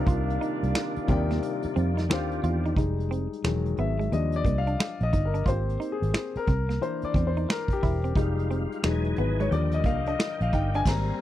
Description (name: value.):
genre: R&B, neo-soul.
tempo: 89 BPM.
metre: 4/4.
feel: swing 64% on 16ths.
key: unclear.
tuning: A4 = 440 Hz.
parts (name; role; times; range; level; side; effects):
vibraphone with soft mallets; melody; 0.0-2.1 s; F5; -38 LUFS; left 9 dB; slapback echo.
semi-hollow electric guitar; second line; 0.0-10.8 s; G#3 to F4; -34 LUFS; right 6 dB; vibrato effect.
warm concert grand piano; accompaniment; 0.0-11.2 s; C3 to Bb5; -30 LUFS; left 6 dB; none.
tonewheel organ; sustained chords; 0.0-2.8, 8.2-11.2 s; Eb3 to G#5; -37 LUFS; right 1 dB; overdrive, chorus vibrato, slow rotary speaker.
warm horn section; stabs; 0.0-2.4 s; Bb2 to F4; -36 LUFS; right 19 dB; none.
vintage muted fingered electric bass; bass; 0.0-11.1 s; E1 to F2; -27 LUFS; right 1 dB; none.
vintage brush drum kit; drums; 0.1-11.1 s; crash cymbal, finger snaps, hi-hat, kick drum, snare drum; -27 LUFS; right 1 dB; none.
room: little or no reverb.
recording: dry, close 1970s-style studio recording.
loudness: -24 LUFS.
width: side -13 dB against mid.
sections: 0.0-2.8 A section; 2.8-11.2 B section.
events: kick muted 1.4-2.8; grand piano solo 2.8-11.2; band accent 10.9-11.2.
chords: 0.0 Cm11; 2.1 Ebmaj13; 2.8 Fm9; 3.4 Emaj7; 4.1 Ebmaj7; 5.5 Abmaj9; 6.5 C7; 8.2 Fm9; 8.8 Emaj7; 9.5 Ebmaj7.